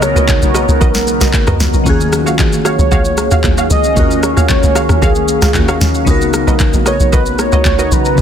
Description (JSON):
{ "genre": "amapiano", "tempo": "114 BPM", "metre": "4/4", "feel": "straight", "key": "Eb minor", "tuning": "A4 = 440 Hz", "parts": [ { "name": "warm velvety synth lead", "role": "melody", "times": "0.0-8.2 s", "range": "Ab4 to Eb5", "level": "-18 LUFS", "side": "equal", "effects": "chorus, ping-pong delay" }, { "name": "glassy digital keys", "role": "accompaniment", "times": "0.0-8.2 s", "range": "Db3 to Bb4", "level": "-18 LUFS", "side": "left 3 dB", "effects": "chorus" }, { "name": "deep dark ambient pad", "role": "sustained chords", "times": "0.0-8.2 s", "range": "Db3 to Bb5", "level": "-20 LUFS", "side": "right 1 dB", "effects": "chorus, built-in reverb, sidechain pumping" }, { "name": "tight log drum bass", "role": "bass", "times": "0.0-8.2 s", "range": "Bb1 to Eb2", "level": "-14 LUFS", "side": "equal", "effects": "none" }, { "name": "smooth R&B drum kit", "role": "drums", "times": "0.0-8.2 s", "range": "handclaps, kick drum, rim click, shaker, snare drum, toms", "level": "-15 LUFS", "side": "equal", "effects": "soft clipping on snare" }, { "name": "punchy chord stab", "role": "stabs", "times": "0.2-7.9 s", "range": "Gb4 to F5", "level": "-21 LUFS", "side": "right 3 dB", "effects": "chorus, ping-pong delay" }, { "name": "congas", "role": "percussion", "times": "0.2-8.0 s", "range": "none", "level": "-24 LUFS", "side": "right 12 dB", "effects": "none" } ], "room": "little or no reverb", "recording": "dense, heavily limited modern master", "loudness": "-10 LUFS", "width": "side -8 dB against mid", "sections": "0.0-8.2 A section", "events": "none", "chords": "0.0 Db13sus4; 1.9 Ebm11; 6.1 Db13sus4" }